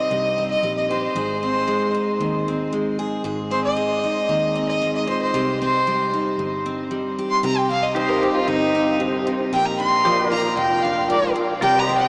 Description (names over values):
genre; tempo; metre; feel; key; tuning
honky-tonk and classic country; 115 BPM; 4/4; straight; C minor; A4 = 439 Hz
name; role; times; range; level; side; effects
clear fiddle; second line; 0.0-12.1 s; Eb4 to C6; -23 LUFS; equal; none
picked steel-string acoustic guitar; accompaniment; 0.0-12.1 s; G2 to Bb4; -27 LUFS; equal; none
vintage muted fingered electric bass; bass; 0.1-12.1 s; F1 to Eb2; -36 LUFS; equal; none
tonewheel organ; accompaniment; 7.9-11.5 s; Eb4 to D5; -29 LUFS; equal; slow rotary speaker, chorus vibrato
pedal steel guitar; sustained chords; 7.9-12.1 s; F4 to Eb5; -28 LUFS; equal; lush chorus
room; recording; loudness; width
wet huge ambient reverb, RT60 7.2 s; in a vast, echoing space, small speaker sound; -21 LUFS; mono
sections
0.0-12.1 A section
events
fiddle solo 0.0-12.1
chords
0.0 Cm; 1.2 Ab; 5.3 Cm; 9.5 Bb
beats
0.10 0.63 | 1.15 1.68 2.20 2.72 | 3.25 3.77 4.29 4.81 | 5.34 5.86 6.38 6.91 | 7.43 7.95 8.48 9.00 | 9.52 10.05 10.57 11.09 | 11.62